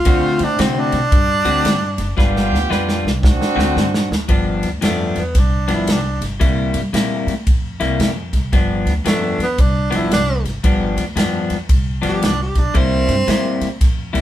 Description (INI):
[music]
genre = electric blues shuffle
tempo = 114 BPM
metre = 4/4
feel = swing 63% on 8ths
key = G mixolydian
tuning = A4 = 440 Hz
[part]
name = clear tenor saxophone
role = melody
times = 0.0-13.8 s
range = A3 to G4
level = -20 LUFS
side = right 2 dB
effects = none
[part]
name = upright bass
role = bass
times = 0.0-14.2 s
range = F#1 to C3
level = -22 LUFS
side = equal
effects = none
[part]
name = electric guitar at the edge of break-up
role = riff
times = 0.1-14.2 s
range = G2 to B4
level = -20 LUFS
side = left 3 dB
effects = none
[part]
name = clear horn section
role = stabs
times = 0.1-4.1 s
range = B3 to G4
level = -23 LUFS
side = right 3 dB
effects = none
[part]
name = natural country drum kit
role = drums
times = 0.1-14.2 s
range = kick drum, ride cymbal, snare drum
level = -18 LUFS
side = equal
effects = none
[sound]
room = light reverb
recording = band playing live in one room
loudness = -15 LUFS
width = side -12 dB against mid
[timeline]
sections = 0.0-4.3 A section; 4.3-14.2 A section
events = tenor saxophone solo 0.0-4.3, 4.3-14.2; drum fill 2.2-4.3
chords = 0.0 D7; 2.2 G7; 3.2 D7; 4.3 G7; 6.4 C7; 8.5 G7; 12.8 C7